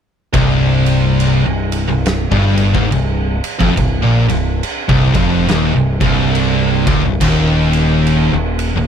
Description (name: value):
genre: stoner and doom metal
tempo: 70 BPM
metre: 4/4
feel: swing 61% on 8ths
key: C minor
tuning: A4 = 438 Hz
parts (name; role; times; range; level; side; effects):
- thick fuzz guitar; riff; 0.3-8.9 s; C2 to Bb2; -17 LUFS; left 8 dB; distortion
- thick fuzz guitar; riff; 0.3-8.9 s; C2 to Bb2; -18 LUFS; right 7 dB; distortion
- tight distorted guitar; riff; 0.3-8.9 s; C2 to Bb2; -19 LUFS; equal; distortion
- growling picked electric bass; bass; 0.3-8.9 s; C1 to Bb1; -19 LUFS; equal; overdrive
- oversized low-tuned drum kit; drums; 0.3-8.7 s; crash cymbal, kick drum, ride cymbal, snare drum; -20 LUFS; right 1 dB; none
room: little or no reverb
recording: none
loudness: -12 LUFS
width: side -8 dB against mid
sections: 0.3-8.9 A section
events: none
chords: 0.3 Cm; 7.2 Eb5